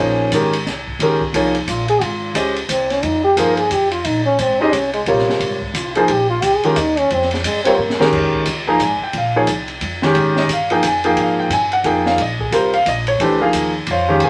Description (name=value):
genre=modal jazz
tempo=177 BPM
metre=3/4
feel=swing 62% on 8ths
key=Bb dorian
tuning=A4 = 440 Hz
part: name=trombone with cup mute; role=second line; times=0.0-8.1 s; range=F3 to Bb4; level=-19 LUFS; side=equal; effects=none
part: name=clear concert grand piano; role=accompaniment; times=0.0-14.3 s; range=C3 to Bb5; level=-18 LUFS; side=equal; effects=none
part: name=upright bass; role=bass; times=0.0-14.3 s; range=Ab1 to Bb2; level=-29 LUFS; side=equal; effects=none
part: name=open jazz drum kit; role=drums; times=0.3-14.3 s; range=crash cymbal, hi-hat, kick drum, ride cymbal, snare drum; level=-26 LUFS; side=equal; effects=none
room=moderate studio ambience, RT60 0.5 s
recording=none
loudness=-17 LUFS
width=mono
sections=0.0-8.1 A section; 8.1-14.3 A section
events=trombone solo 0.0-8.1; drum fill 7.8-8.1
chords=0.0 Bbm9; 6.1 Fm/Bb; 8.1 Bbm9; 10.2 Fm; 12.2 Bbm9